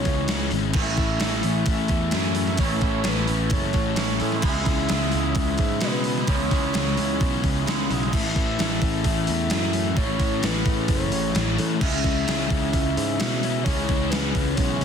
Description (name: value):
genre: rock, shoegaze and dream pop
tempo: 130 BPM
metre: 4/4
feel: straight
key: unclear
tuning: A4 = 440 Hz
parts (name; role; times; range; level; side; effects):
- breathy flute-like synth lead; melody; 0.0-14.8 s; B4 to E5; -31 LUFS; right 1 dB; chorus, slapback echo
- picked plugged-in twelve-string acoustic guitar; arpeggios; 0.0-14.8 s; E3 to G#4; -36 LUFS; right 11 dB; wide subtle chorus, slapback echo
- overdriven semi-hollow guitar; riff; 0.0-14.8 s; A2 to E4; -28 LUFS; left 13 dB; analog chorus
- overdriven semi-hollow guitar; riff; 0.0-14.8 s; A2 to C#4; -29 LUFS; equal; none
- picked electric bass; bass; 0.0-14.8 s; F#1 to B2; -27 LUFS; right 1 dB; none
- gated 80s digital drum machine; drums; 0.1-14.8 s; crash cymbal, hi-hat, kick drum, snare drum; -25 LUFS; right 1 dB; gated reverb, gated reverb snare, overdrive
- twangy electric guitar; riff; 0.7-8.1 s; A2 to E4; -30 LUFS; right 12 dB; reverse reverb
room: digital ambience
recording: dense, heavily limited modern master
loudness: -20 LUFS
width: side -7 dB against mid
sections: 0.0-8.1 A section; 8.1-14.8 B section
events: none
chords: 0.0 C#m7; 0.7 Amaj7; 4.4 C#m7; 8.1 Amaj7; 11.8 C#m7